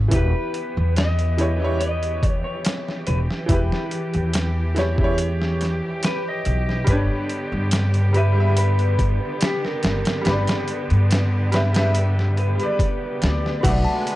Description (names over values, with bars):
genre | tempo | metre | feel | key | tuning
trip hop | 71 BPM | 4/4 | straight | unclear | A4 = 442 Hz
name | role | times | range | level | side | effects
clear upright piano | accompaniment | 0.0-14.2 s | C#3 to E5 | -27 LUFS | equal | tremolo, vintage 12-bit sampler grit, tape echo
upright bass | bass | 0.0-13.8 s | E1 to G2 | -20 LUFS | equal | none
clean lap steel guitar | melody | 0.1-14.2 s | G4 to F#5 | -29 LUFS | left 2 dB | vintage 12-bit sampler grit, tape echo
rich studio string section | sustained chords | 0.1-14.2 s | D3 to B4 | -30 LUFS | right 1 dB | none
boom bap sampler-style drum kit | drums | 0.1-14.2 s | crash cymbal, hi-hat, kick drum, snare drum | -23 LUFS | equal | overdrive, small room reverb
music box | arpeggios | 13.6-14.2 s | F#4 to A5 | -28 LUFS | left 2 dB | vintage 12-bit sampler grit
room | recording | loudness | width
light reverb | worn, warbling old tape, cassette tape, warbly pitch drift | -18 LUFS | side -16 dB against mid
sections
0.0-13.6 A section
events
none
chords
0.1 Em; 6.9 G; 13.6 Bm7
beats
| 0.12 0.96 1.80 2.65 | 3.50 4.34 5.18 6.03 | 6.88 7.72 8.56 9.41 | 10.26 11.10 11.95 12.79 | 13.64